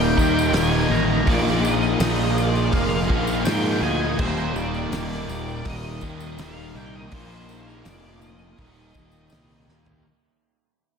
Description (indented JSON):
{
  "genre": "rock, shoegaze and dream pop",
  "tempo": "82 BPM",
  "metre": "4/4",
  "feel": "straight",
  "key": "Eb major",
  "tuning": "A4 = 440 Hz",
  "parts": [
    { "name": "octave-fuzz lead guitar", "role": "melody", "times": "0.0-9.6 s", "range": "Bb4 to Bb5", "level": "-30 LUFS", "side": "left 1 dB", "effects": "distortion, ping-pong delay" },
    { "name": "string machine, violins", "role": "sustained chords", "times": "0.0-10.0 s", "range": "Eb4 to Bb5", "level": "-31 LUFS", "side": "equal", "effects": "ensemble chorus" },
    { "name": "twangy electric guitar", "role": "arpeggios", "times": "0.0-10.1 s", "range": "Eb2 to Eb4", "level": "-34 LUFS", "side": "right 7 dB", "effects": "analog chorus, ping-pong delay" },
    { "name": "crunchy overdriven guitar", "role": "riff", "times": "0.0-10.0 s", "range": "Eb2 to F4", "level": "-28 LUFS", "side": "right 8 dB", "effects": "reverse reverb" },
    { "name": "crunchy overdriven guitar", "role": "riff", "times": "0.0-10.0 s", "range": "Eb2 to F4", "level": "-30 LUFS", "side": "equal", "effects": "none" },
    { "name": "thick fuzz guitar", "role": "riff", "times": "0.0-10.0 s", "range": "Eb2 to Bb3", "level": "-27 LUFS", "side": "left 8 dB", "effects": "distortion, analog chorus" },
    { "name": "fuzz fingered electric bass", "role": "bass", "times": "0.0-10.0 s", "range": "Eb1 to Ab2", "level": "-27 LUFS", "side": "equal", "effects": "overdrive" },
    { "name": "tambourine", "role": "percussion", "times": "0.0-9.9 s", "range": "none", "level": "-42 LUFS", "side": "left 11 dB", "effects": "none" },
    { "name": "loose indie drum kit", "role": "drums", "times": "0.2-10.0 s", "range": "crash cymbal, hi-hat, kick drum, snare drum, toms", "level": "-28 LUFS", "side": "equal", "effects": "none" }
  ],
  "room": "moderate lush hall reverb, RT60 2.6 s",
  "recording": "dreamy mix soaked in reverb",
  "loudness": "-19 LUFS",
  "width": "side -6 dB against mid",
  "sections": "0.0-10.0 A section",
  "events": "fade-out 0.0-10.0; drum fill 9.7-10.0",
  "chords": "0.0 Eb; 1.3 Bb7sus4; 4.2 Ebmaj7; 7.1 Bb7sus4; 8.6 Eb",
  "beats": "0.54 | 1.27 2.00 2.74 3.47 | 4.20 4.93 5.66 6.39 | 7.12 7.86 8.59 9.32"
}